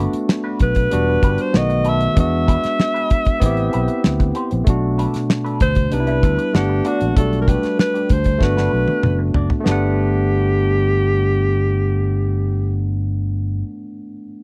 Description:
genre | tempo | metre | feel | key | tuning
lush 1970s-style soul | 96 BPM | 4/4 | straight | G major | A4 = 436 Hz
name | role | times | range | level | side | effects
barky tine electric piano | accompaniment | 0.0-14.4 s | B2 to F#5 | -24 LUFS | equal | none
electric guitar at the edge of break-up | riff | 0.0-13.7 s | A3 to D5 | -34 LUFS | equal | wah
fingered electric bass | bass | 0.0-13.6 s | E1 to E2 | -22 LUFS | equal | none
damped 70s drum kit | drums | 0.1-9.8 s | hi-hat, kick drum, snare drum, toms | -19 LUFS | equal | none
warm alto saxophone | melody | 0.6-12.9 s | F#4 to E5 | -24 LUFS | equal | none
room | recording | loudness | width
little or no reverb | dry, close 1970s-style studio recording | -18 LUFS | mono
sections
0.0-9.7 A section; 9.7-12.2 B section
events
drum fill 8.4-9.7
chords
0.0 Gmaj7 (rootless); 0.9 Em7; 1.5 B7; 2.2 E7; 3.4 Am9; 4.7 Bm7; 5.9 Cmaj9; 6.5 Gmaj7; 7.2 Gmaj9/B; 8.4 Gmaj7

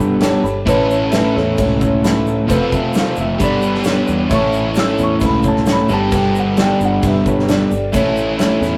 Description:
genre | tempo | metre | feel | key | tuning
folk rock and heartland rock | 132 BPM | 4/4 | straight | A mixolydian | A4 = 441 Hz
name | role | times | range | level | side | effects
clear grand piano | accompaniment | 0.0-8.7 s | E4 to B5 | -24 LUFS | equal | none
picked old ladder-braced acoustic guitar | accompaniment | 0.0-8.8 s | A2 to C#5 | -29 LUFS | equal | none
crunchy overdriven guitar | riff | 0.0-8.8 s | G2 to B4 | -19 LUFS | equal | none
fingered electric bass | bass | 0.0-8.8 s | F1 to E2 | -26 LUFS | equal | none
egg shaker | percussion | 0.0-8.7 s | none | -41 LUFS | equal | none
loose indie drum kit | drums | 0.2-8.7 s | crash cymbal, kick drum, snare drum | -23 LUFS | equal | none
dark upright piano | second line | 0.7-7.9 s | C#4 to E6 | -24 LUFS | equal | none
room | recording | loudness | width
moderate small room reverb, RT60 0.5 s | rough rehearsal-room recording, tube saturation | -16 LUFS | mono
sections
0.0-8.8 A section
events
grand piano fill 0.0-0.7; upright piano solo 0.0-8.8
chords
0.0 Gadd9; 0.7 A; 2.5 F; 3.4 Gadd9; 4.3 A; 5.9 Gadd9; 7.9 A

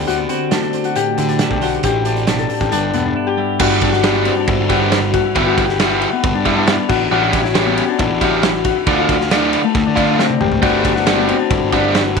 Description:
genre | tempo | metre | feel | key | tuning
math rock and midwest emo | 137 BPM | 4/4 | straight | G major | A4 = 444 Hz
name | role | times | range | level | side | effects
twelve-string electric guitar | accompaniment | 0.0-5.4 s | G2 to C5 | -22 LUFS | right 13 dB | none
Celtic harp | arpeggios | 0.0-12.2 s | A3 to A4 | -17 LUFS | left 11 dB | none
fuzz picked electric bass | bass | 0.0-12.2 s | E1 to D3 | -22 LUFS | right 3 dB | overdrive
loose indie drum kit | drums | 0.1-12.2 s | crash cymbal, hi-hat, kick drum, ride cymbal, snare drum, toms | -20 LUFS | right 3 dB | none
biting overdriven guitar | riff | 3.6-12.0 s | D3 to G4 | -18 LUFS | right 2 dB | none
room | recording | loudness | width
light reverb, small room ambience | 1960s-style stereo with parts hard left and right | -13 LUFS | side -5 dB against mid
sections
0.0-3.6 A section; 3.6-12.2 B section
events
drum fill 10.2-10.6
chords
0.0 D7; 1.8 Am7; 2.7 G6; 3.6 Gmaj7; 5.4 Em7/G; 6.9 A7; 8.9 Dm7; 10.6 Gmaj7

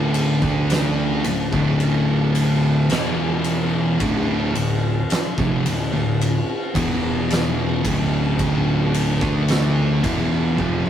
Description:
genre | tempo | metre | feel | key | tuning
stoner and doom metal | 55 BPM | 4/4 | straight | D minor | A4 = 439 Hz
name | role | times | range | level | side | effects
thick fuzz guitar | riff | 0.0-10.9 s | D2 to D4 | -21 LUFS | left 2 dB | distortion
thick fuzz guitar | riff | 0.0-10.9 s | D2 to D4 | -24 LUFS | right 6 dB | distortion
fuzz picked electric bass | bass | 0.0-10.9 s | D1 to D2 | -28 LUFS | right 1 dB | overdrive
oversized low-tuned drum kit | drums | 0.1-10.9 s | kick drum, ride cymbal, snare drum, toms | -23 LUFS | left 1 dB | none
room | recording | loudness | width
light reverb | rough rehearsal-room recording, tube saturation | -18 LUFS | side -10 dB against mid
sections
0.0-10.9 A section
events
drum fill 10.6-10.9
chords
0.0 D5; 2.9 E5; 4.0 Dm; 6.7 E5; 7.8 Dm

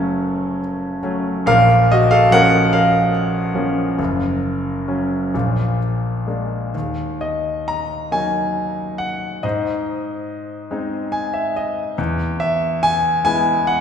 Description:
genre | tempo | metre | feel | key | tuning
classical, lyrical solo piano | 42-49 BPM (dotted quarters) | 6/8 | rubato | Bb harmonic minor, Eb phrygian from 6.7 s | A4 = 440 Hz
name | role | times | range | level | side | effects
clear grand piano | solo | 0.0-13.8 s | Gb1 to Bb5 | -16 LUFS | equal | none
room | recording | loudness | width
wet recital hall reverb, RT60 1.8 s | recorded in a church or concert hall | -16 LUFS | side -8 dB against mid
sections
0.0-6.7 A section; 6.7-13.8 B section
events
grand piano fill 10.7-12.0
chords
0.0 Gbm; 1.5 Bbm; 4.0 Gb5; 5.3 Bb7; 6.7 Ebm; 9.4 Ab; 12.0 E

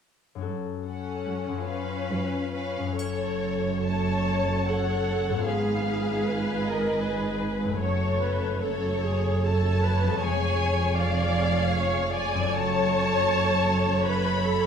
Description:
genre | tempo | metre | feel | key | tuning
classical, slow romantic movement for symphony orchestra | 64-80 BPM | 3/4 | rubato | F# minor | A4 = 440 Hz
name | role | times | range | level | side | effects
concert harp | arpeggios | 0.4-14.7 s | E#2 to C#5 | -33 LUFS | left 8 dB | none
warm chamber cello section | bass | 0.5-14.7 s | E#2 to Ab2 | -29 LUFS | right 3 dB | none
warm symphonic violin section | melody | 0.9-14.7 s | C#5 to B5 | -32 LUFS | left 1 dB | none
rich symphonic violin section | second line | 0.9-14.7 s | Ab4 to C#5 | -32 LUFS | left 4 dB | none
dark symphonic viola section | accompaniment | 0.9-14.7 s | C#4 to D5 | -29 LUFS | equal | none
rich symphonic double bass section | bass | 3.0-14.7 s | E#1 to Ab1 | -31 LUFS | right 3 dB | none
triangle | percussion | 3.0-4.6 s | none | -46 LUFS | left 2 dB | none
room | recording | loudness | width
wet recital hall reverb, RT60 1.4 s | none | -23 LUFS | side -7 dB against mid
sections
0.5-3.0 A section; 3.0-14.7 B section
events
none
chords
0.5 F#m; 5.5 Fdim/Ab; 7.8 F#m; 10.2 C#/E#; 12.5 F#m

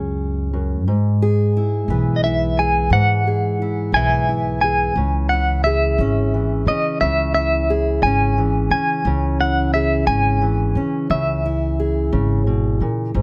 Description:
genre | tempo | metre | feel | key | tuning
acoustic folk duo or small band | 59 BPM (dotted quarters) | 6/8 | straight | unclear | A4 = 437 Hz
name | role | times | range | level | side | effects
fingerpicked steel-string acoustic guitar | accompaniment | 0.0-13.2 s | F#2 to G#4 | -24 LUFS | equal | none
upright bass | bass | 0.0-13.2 s | G#1 to C#3 | -23 LUFS | equal | none
clean electric guitar | melody | 2.2-12.4 s | D#5 to G#5 | -22 LUFS | equal | tremolo
room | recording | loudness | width
little or no reverb | close, detailed microphones | -19 LUFS | mono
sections
0.0-5.0 A section; 5.0-13.2 B section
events
none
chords
0.0 F#sus2; 0.9 E; 5.0 C#m

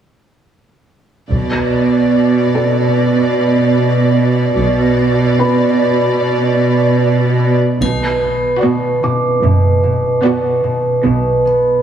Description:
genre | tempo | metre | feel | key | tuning
cinematic, suspense film score | 74 BPM | 4/4 | straight | B minor | A4 = 440 Hz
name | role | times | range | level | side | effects
warm studio violin section | melody | 1.3-10.8 s | D5 | -19 LUFS | equal | none
clear symphonic cello section | bass | 1.3-11.7 s | F#2 to B2 | -13 LUFS | right 2 dB | none
clear symphonic double bass section | bass | 1.3-11.7 s | F#1 to B1 | -18 LUFS | right 2 dB | none
taiko ensemble | drums | 1.3-2.9, 7.8-9.4 s | none | -23 LUFS | equal | none
felt-muted upright piano | texture | 2.5-11.8 s | A4 to D6 | -24 LUFS | left 1 dB | none
concert harp | riff | 7.8-11.8 s | B2 to B3 | -14 LUFS | equal | none
triangle | percussion | 7.8-9.4 s | none | -31 LUFS | left 1 dB | none
warm symphonic violin section | second line | 8.6-10.8 s | F#4 | -22 LUFS | equal | none
rich symphonic viola section | accompaniment | 8.6-10.8 s | B3 | -18 LUFS | right 4 dB | none
room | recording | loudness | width
moderate scoring stage reverb, RT60 1.7 s | heavily compressed radio sound | -11 LUFS | side -9 dB against mid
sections
1.3-7.8 A section; 7.8-11.8 B section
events
none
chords
1.3 Bm

